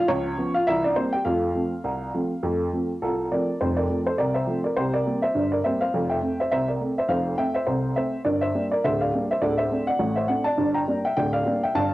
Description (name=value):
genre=ragtime piano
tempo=103 BPM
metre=2/4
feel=swing 56% on 16ths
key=F major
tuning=A4 = 440 Hz
part: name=warm upright piano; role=solo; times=0.0-11.9 s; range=D1 to Bb5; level=-22 LUFS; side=equal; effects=cassette tape
room=moderate spring reverb, RT60 1.6 s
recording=home recording on cassette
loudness=-22 LUFS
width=side -17 dB against mid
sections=0.0-3.6 A section; 3.6-11.9 B section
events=none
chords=0.1 Db7; 0.7 C7; 1.2 F; 4.8 C5; 5.9 F; 8.3 Gm; 9.4 D5; 10.6 Gm